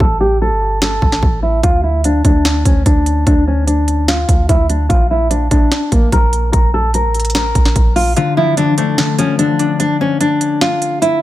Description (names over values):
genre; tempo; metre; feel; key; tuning
hip hop, trap; 147 BPM; 4/4; half-time; D harmonic minor; A4 = 441 Hz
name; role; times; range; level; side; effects
nylon-string guitar; melody; 0.0-11.2 s; Bb3 to Bb4; -15 LUFS; equal; low-pass filter, tape echo
warm 808-style bass; bass; 0.0-8.1 s; G1 to D2; -16 LUFS; equal; none
trap drum kit; drums; 0.0-11.1 s; hi-hat, kick drum, snare drum; -14 LUFS; equal; none
concert harp; accompaniment; 8.2-11.2 s; D3 to D4; -17 LUFS; left 6 dB; low-pass filter
room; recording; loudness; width
light reverb; none; -11 LUFS; side -14 dB against mid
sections
0.0-11.2 A section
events
break 0.0-1.6; filter sweep 0.0-8.2; kick muted 8.2-11.2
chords
0.0 N.C.; 8.2 Dm